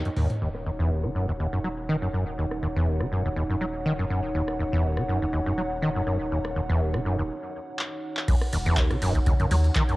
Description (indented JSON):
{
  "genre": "acid house",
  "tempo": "122 BPM",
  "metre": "4/4",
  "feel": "swing 54% on 16ths",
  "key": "Eb phrygian",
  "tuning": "A4 = 440 Hz",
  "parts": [
    { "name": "dark analog pad", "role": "sustained chords", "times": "0.0-10.0 s", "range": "Eb4 to Gb5", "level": "-32 LUFS", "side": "right 1 dB", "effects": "chorus, sidechain pumping, cassette tape" },
    { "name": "acid bass, saw", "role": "riff", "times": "0.0-10.0 s", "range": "Eb2 to Gb3", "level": "-26 LUFS", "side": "equal", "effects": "overdrive, ensemble chorus, sidechain pumping, cassette tape, analog delay" },
    { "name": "booming analog drum machine", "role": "drums", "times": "0.1-10.0 s", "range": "crash cymbal, handclaps, hi-hat, ride cymbal, rim click, toms", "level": "-32 LUFS", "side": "equal", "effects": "low-pass filter on hats, low-pass filter on snare, low-pass filter on toms, low-pass filter on cymbals" },
    { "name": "saturated sub bass", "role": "bass", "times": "0.4-9.7 s", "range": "Eb1 to Eb2", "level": "-32 LUFS", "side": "equal", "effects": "sidechain pumping" },
    { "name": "electronic kick drum", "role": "drums", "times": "8.3-9.9 s", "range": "none", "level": "-23 LUFS", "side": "equal", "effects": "none" }
  ],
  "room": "light reverb",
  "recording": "home recording on cassette",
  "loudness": "-24 LUFS",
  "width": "side -19 dB against mid",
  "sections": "0.4-8.3 A section; 8.3-10.0 B section",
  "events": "break 0.0-0.4, 7.3-8.3; drum fill 0.0-0.4, 7.8-8.3; filter sweep on drum 0.4-8.3; drop 8.3-10.0",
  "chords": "0.4 Ebm7",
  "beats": "| 0.41 0.90 1.40 1.89 | 2.38 2.87 3.36 3.85 | 4.35 4.84 5.33 5.82 | 6.31 6.81 7.30 7.79 | 8.28 8.77 9.27 9.76"
}